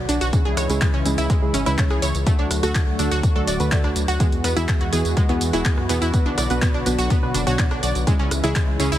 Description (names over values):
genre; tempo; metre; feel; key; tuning
progressive house; 124 BPM; 4/4; straight; unclear; A4 = 437 Hz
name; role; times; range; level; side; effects
warm analog pad; sustained chords; 0.0-9.0 s; C#3 to F#4; -28 LUFS; left 1 dB; chorus, sidechain pumping
round analog bass; bass; 0.0-9.0 s; D1 to F#2; -25 LUFS; equal; sidechain pumping
wide unison pluck; arpeggios; 0.1-9.0 s; G#3 to D5; -25 LUFS; equal; cassette tape, sidechain pumping, digital delay
deep house drum kit; drums; 0.1-9.0 s; handclaps, hi-hat, rim click, tambourine; -28 LUFS; right 1 dB; none
deep mellow chord stab; stabs; 0.3-9.0 s; B2 to D5; -26 LUFS; right 2 dB; analog chorus, sidechain pumping, digital delay
electronic kick drum; drums; 0.3-8.7 s; none; -20 LUFS; equal; none
room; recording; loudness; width
light reverb; heavily compressed radio sound; -18 LUFS; side -12 dB against mid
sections
0.0-9.0 A section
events
none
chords
0.3 C#m; 2.3 D; 4.2 Eadd9; 6.1 Bm; 8.1 C#m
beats
| 0.33 0.81 1.30 1.78 | 2.27 2.75 3.23 3.72 | 4.20 4.68 5.17 5.65 | 6.14 6.62 7.10 7.59 | 8.07 8.55